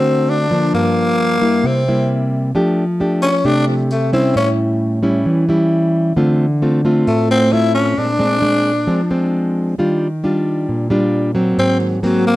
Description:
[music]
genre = bossa nova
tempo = 133 BPM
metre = 4/4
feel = straight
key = F major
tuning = A4 = 442 Hz
[part]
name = growling tenor saxophone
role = melody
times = 0.0-12.4 s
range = Eb3 to E4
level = -16 LUFS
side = left 1 dB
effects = slapback echo
[part]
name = nylon-string guitar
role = accompaniment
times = 0.0-12.4 s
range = G2 to G4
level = -15 LUFS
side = equal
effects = none
[sound]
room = light reverb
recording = dry, close 1970s-style studio recording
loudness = -13 LUFS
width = side -16 dB against mid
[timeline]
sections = 0.0-2.5 A section; 2.5-12.4 B section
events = tenor saxophone solo 2.5-12.4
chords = 0.0 D7; 0.7 Gm7; 1.6 C7; 2.5 F69; 4.3 A7; 6.2 Dm7; 8.0 Bb9; 9.8 Ebmaj9; 11.6 Ab9

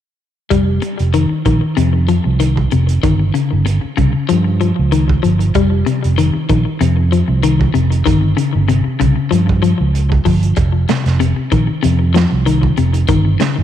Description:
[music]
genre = afrobeat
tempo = 95 BPM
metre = 4/4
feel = swing 54% on 16ths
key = unclear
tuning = A4 = 439 Hz
[part]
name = electric guitar at the edge of break-up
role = arpeggios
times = 0.5-13.6 s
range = C3 to G3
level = -15 LUFS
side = left 5 dB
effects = tape echo
[part]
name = fingered electric bass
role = bass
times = 0.5-13.6 s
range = F1 to G2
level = -14 LUFS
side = right 2 dB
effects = none
[part]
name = crunchy breakbeat drum kit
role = drums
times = 0.5-13.6 s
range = hi-hat, kick drum, snare drum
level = -20 LUFS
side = right 4 dB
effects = none
[sound]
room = moderate echo chamber reverb, RT60 2.1 s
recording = 1960s-style stereo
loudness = -12 LUFS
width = side -10 dB against mid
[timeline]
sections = 0.5-13.6 A section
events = none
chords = 0.5 F5; 3.0 Eb9/G; 5.6 F5; 8.1 Eb13/G (rootless); 10.6 F5; 13.1 Eb7/G

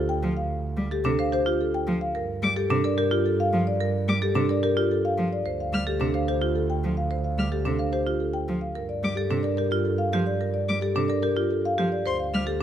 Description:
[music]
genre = classical, minimalist pattern music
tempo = 109 BPM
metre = 3/4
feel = straight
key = G minor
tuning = A4 = 440 Hz
[part]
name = marimba with soft mallets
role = melody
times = 0.0-12.6 s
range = G4 to G5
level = -27 LUFS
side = left 5 dB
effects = none
[part]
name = warm double bass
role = bass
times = 0.0-12.6 s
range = D2 to G2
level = -29 LUFS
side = right 3 dB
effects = none
[part]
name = warm cello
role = accompaniment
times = 0.2-12.4 s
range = C3 to G3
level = -30 LUFS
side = equal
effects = none
[part]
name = marimba with medium hard mallets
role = arpeggios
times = 0.9-12.6 s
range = D4 to C5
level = -29 LUFS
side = right 6 dB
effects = none
[part]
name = warm violin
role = arpeggios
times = 2.4-12.4 s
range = C6 to F6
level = -31 LUFS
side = left 4 dB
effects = none
[sound]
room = light reverb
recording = close, detailed microphones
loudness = -23 LUFS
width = side -10 dB against mid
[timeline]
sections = 0.0-12.6 A section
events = none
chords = 0.0 Dm7; 2.2 Gm9; 5.5 Dm7; 8.8 Gm9; 12.1 Dm7

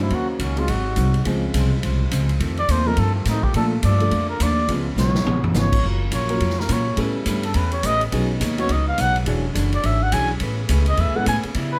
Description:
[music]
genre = jazz, big band swing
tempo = 210 BPM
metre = 4/4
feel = swing 61% on 8ths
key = unclear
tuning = A4 = 441 Hz
[part]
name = trumpet with cup mute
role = melody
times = 0.0-11.8 s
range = Bb3 to G#5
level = -27 LUFS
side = equal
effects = none
[part]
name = warm grand piano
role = accompaniment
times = 0.0-11.3 s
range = F3 to C5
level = -29 LUFS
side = equal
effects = none
[part]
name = warm saxophone section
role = sustained chords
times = 0.0-11.8 s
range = C3 to C5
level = -35 LUFS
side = equal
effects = none
[part]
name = upright bass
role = bass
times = 0.0-11.8 s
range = E1 to C#3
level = -24 LUFS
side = equal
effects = none
[part]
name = swinging big-band drum kit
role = drums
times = 0.0-11.6 s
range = crash cymbal, hi-hat, kick drum, ride cymbal, snare drum, toms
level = -30 LUFS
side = equal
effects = none
[part]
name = archtop guitar, miked and amplified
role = accompaniment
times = 0.1-11.7 s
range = F2 to C#5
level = -31 LUFS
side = equal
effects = none
[sound]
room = light reverb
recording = none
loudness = -21 LUFS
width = mono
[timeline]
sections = 0.0-5.8 A section; 5.8-11.8 A section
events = muted trumpet solo 0.0-11.8; drum fill 5.0-5.5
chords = 0.1 Ebm7; 0.7 Ab7; 1.3 Dbmaj7; 2.4 F7; 3.5 Bbmaj7; 4.7 Db7; 5.8 F#maj7; 7.0 A9; 8.1 B69; 9.3 E13; 10.4 Amaj9

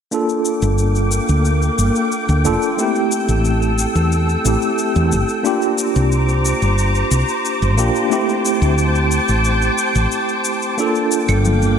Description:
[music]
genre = sunset chillout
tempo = 90 BPM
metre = 4/4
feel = straight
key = G dorian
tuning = A4 = 436 Hz
[part]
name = tine electric piano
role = accompaniment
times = 0.1-11.8 s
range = A3 to A4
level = -19 LUFS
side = right 1 dB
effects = medium stereo tremolo, auto-pan, low-pass filter, ping-pong delay
[part]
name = soft string machine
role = sustained chords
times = 0.4-11.8 s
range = Bb3 to E6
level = -21 LUFS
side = equal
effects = ensemble chorus
[part]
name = shaker and claves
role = drums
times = 0.1-11.8 s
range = none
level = -28 LUFS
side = left 4 dB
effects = overdrive
[part]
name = woody fretless electric bass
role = bass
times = 0.6-11.8 s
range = F1 to E2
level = -16 LUFS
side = equal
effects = none
[part]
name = congas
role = percussion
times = 11.5-11.8 s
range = none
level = -25 LUFS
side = left 3 dB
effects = none
[sound]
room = moderate lush hall reverb, RT60 1.7 s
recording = bright 1980s-style digital production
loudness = -15 LUFS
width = side -8 dB against mid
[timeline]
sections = 0.1-11.8 A section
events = none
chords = 0.1 Gm7; 2.8 Am7; 5.5 C9sus4; 8.1 D7sus4; 10.8 Gm7

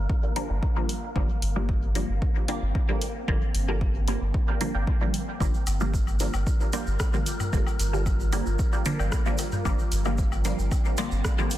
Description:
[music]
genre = dub techno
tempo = 113 BPM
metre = 4/4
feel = straight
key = G minor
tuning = A4 = 440 Hz
[part]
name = warm sub bass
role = bass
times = 0.0-11.2 s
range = G1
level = -27 LUFS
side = equal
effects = sidechain pumping
[part]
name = wind-like tuned noise texture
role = texture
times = 0.0-11.6 s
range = Bb3 to Bb4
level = -40 LUFS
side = equal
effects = built-in reverb, sidechain pumping
[part]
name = electronic kick drum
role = drums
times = 0.1-11.4 s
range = none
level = -26 LUFS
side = equal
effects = none
[part]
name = filtered dub chord stab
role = riff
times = 0.2-11.1 s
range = Bb4 to G5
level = -41 LUFS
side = right 3 dB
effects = phaser, analog chorus, sidechain pumping, dub echo
[part]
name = filtered dub chord stab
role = stabs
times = 0.4-11.6 s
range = D3 to Bb3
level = -31 LUFS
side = equal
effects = phaser, sidechain pumping, dub echo
[part]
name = deep house drum kit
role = drums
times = 0.4-11.6 s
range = hi-hat, rim click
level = -35 LUFS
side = equal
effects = soft clipping on snare
[part]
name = deep dark ambient pad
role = sustained chords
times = 6.9-11.6 s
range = G3 to Bb4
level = -38 LUFS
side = equal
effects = chorus, built-in reverb, vintage 12-bit sampler grit, sidechain pumping
[part]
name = electronic woodblock and toms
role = percussion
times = 5.4-11.5 s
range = none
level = -37 LUFS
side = left 2 dB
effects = sidechain pumping on perc, sidechain pumping on toms, dub echo
[part]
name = tube shaker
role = percussion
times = 5.4-11.6 s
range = none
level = -40 LUFS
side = right 4 dB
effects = none
[sound]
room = digital ambience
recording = dense, heavily limited modern master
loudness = -23 LUFS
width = side -14 dB against mid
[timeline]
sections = 0.0-11.6 A section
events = none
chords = 0.0 Gm7

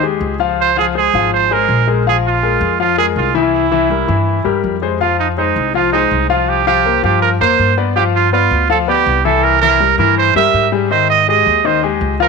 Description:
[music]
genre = latin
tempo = 163 BPM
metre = 4/4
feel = straight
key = F minor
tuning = A4 = 441 Hz
[part]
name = bright trumpet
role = melody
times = 0.0-12.3 s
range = Eb4 to E5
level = -14 LUFS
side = right 12 dB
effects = tape echo
[part]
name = clear concert grand piano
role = accompaniment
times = 0.0-12.3 s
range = Eb3 to F5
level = -16 LUFS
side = left 12 dB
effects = none
[part]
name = upright bass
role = bass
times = 0.0-12.3 s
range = Ab1 to Ab2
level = -20 LUFS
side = equal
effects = none
[sound]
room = light reverb, small room ambience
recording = 1960s-style stereo with parts hard left and right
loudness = -11 LUFS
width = side -4 dB against mid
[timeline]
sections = 0.0-5.0 A section; 5.0-12.3 A section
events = none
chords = 0.0 Ab5; 0.6 Dbmaj7; 2.1 Bb5; 3.5 C7; 5.0 Fm7; 6.5 C7sus4; 8.0 G7; 9.4 C7; 10.9 Ab5

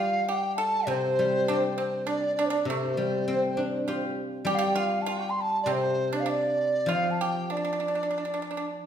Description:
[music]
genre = chinese traditional, Chinese chamber ensemble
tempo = 99 BPM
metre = 4/4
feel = rubato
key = G shang mode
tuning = A4 = 440 Hz
[part]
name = mellow hollow large dizi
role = melody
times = 0.0-8.8 s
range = C5 to C6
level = -27 LUFS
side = right 1 dB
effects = none
[part]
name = pipa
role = second line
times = 0.0-8.6 s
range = C4 to A4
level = -32 LUFS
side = right 3 dB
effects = none
[part]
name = guzheng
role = accompaniment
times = 0.0-8.7 s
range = C3 to G4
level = -30 LUFS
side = left 1 dB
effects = none
[sound]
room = wet recital hall reverb, RT60 1.4 s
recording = recorded in a church or concert hall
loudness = -25 LUFS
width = side -9 dB against mid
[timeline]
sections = 0.0-8.9 A section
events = none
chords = none

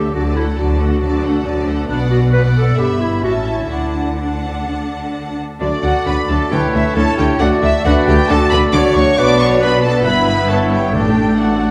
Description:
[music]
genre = quick classical-period movement for symphony orchestra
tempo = 135 BPM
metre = 4/4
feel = rubato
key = D major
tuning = A4 = 440 Hz
[part]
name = rich studio violin section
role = melody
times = 0.0-11.7 s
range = D5 to D6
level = -25 LUFS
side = equal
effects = none
[part]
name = rich studio violin section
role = second line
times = 0.0-11.7 s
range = D4 to F#5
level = -26 LUFS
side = equal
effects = none
[part]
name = warm clarinet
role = second line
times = 0.0-11.7 s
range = D4 to B4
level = -25 LUFS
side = equal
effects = none
[part]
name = rich studio viola section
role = accompaniment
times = 0.0-11.7 s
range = F#3 to E4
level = -24 LUFS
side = equal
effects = none
[part]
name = rich studio double bass section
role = bass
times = 0.0-11.7 s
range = G1 to D2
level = -22 LUFS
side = equal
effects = none
[part]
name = warm studio cello section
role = bass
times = 0.0-11.7 s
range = G2 to D3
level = -23 LUFS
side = equal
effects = none
[part]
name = clear oboe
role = second line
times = 5.6-11.7 s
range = B4 to D5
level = -24 LUFS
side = equal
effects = none
[part]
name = warm bassoon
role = accompaniment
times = 5.6-11.7 s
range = A3 to B3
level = -27 LUFS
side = equal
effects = none
[part]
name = dark French horn section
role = sustained chords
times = 5.6-11.7 s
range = A3 to F#4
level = -25 LUFS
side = equal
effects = none
[part]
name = silver concert flute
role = second line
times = 6.5-11.7 s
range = A4 to F#5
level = -24 LUFS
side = equal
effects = none
[part]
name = timpani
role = percussion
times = 6.5-7.1, 10.9-11.6 s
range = A2 to D3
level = -26 LUFS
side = equal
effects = none
[sound]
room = wet recital hall reverb, RT60 1.4 s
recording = recorded in a church or concert hall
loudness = -15 LUFS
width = mono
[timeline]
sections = 0.0-5.6 A section; 5.6-11.7 B section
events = none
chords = 0.1 D; 1.9 Bm; 2.8 Em/G; 3.2 A; 3.7 D; 6.5 A/D; 7.4 D; 9.2 Bm; 10.1 Em/G; 10.9 D/A

